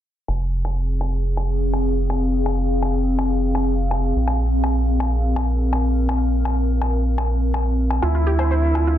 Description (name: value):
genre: melodic techno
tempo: 124 BPM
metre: 4/4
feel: straight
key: F minor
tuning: A4 = 441 Hz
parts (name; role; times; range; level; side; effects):
- round analog bass; bass; 0.3-9.0 s; F1 to D2; -20 LUFS; right 1 dB; none
- woodblock; drums; 0.3-8.8 s; none; -29 LUFS; left 3 dB; low-pass filter on perc, low-pass filter on room
- warbly tape-like pad; texture; 0.8-9.0 s; C4 to F5; -24 LUFS; left 3 dB; chorus, built-in reverb
- soft supersaw; melody; 8.0-9.0 s; E4; -22 LUFS; right 3 dB; cassette tape
- analog pluck; arpeggios; 8.0-8.9 s; F4 to C5; -27 LUFS; right 2 dB; chorus, ping-pong delay
room: little or no reverb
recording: dense, heavily limited modern master, low-pass filter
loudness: -18 LUFS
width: side -11 dB against mid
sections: 0.3-9.0 A section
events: filter sweep on drum 0.3-9.0; filter sweep 0.3-9.0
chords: 0.3 Fm; 4.2 Bbsus2; 8.0 Dmadd9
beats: | 0.28 0.77 1.25 1.73 | 2.22 2.70 3.19 3.67 | 4.15 4.64 5.12 5.61 | 6.09 6.57 7.06 7.54 | 8.03 8.51